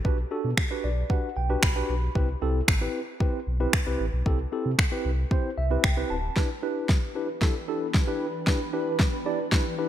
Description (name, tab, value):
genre	dance-pop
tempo	114 BPM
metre	4/4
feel	straight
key	E minor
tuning	A4 = 439 Hz
part	tine electric piano	accompaniment	0.0-9.9 s	C4 to B5	-30 LUFS	right 1 dB	medium stereo tremolo, sidechain pumping
part	sub bass with octave	bass	0.0-6.3 s	D1 to C3	-27 LUFS	equal	sidechain pumping
part	deep house drum kit	drums	0.0-9.6 s	finger snaps, kick drum, snare drum	-24 LUFS	equal	none
part	shimmering ambient pad	sustained chords	7.1-9.9 s	E3 to B4	-34 LUFS	right 1 dB	chorus, built-in reverb, phaser, sidechain pumping
room	light reverb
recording	bright 1980s-style digital production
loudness	-24 LUFS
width	side -11 dB against mid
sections	0.0-6.4 A section; 6.4-9.9 B section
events	tine electric piano fill 0.6-2.2, 5.3-6.4; build-up 6.4-9.9; drum fill 6.4-9.9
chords	0.0 Gmaj7; 2.2 Cmaj7; 6.4 Em7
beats	| 0.05 0.57 1.10 1.63 | 2.15 2.68 3.21 3.73 | 4.26 4.79 5.31 5.84 | 6.36 6.89 7.42 7.94 | 8.47 9.00 9.52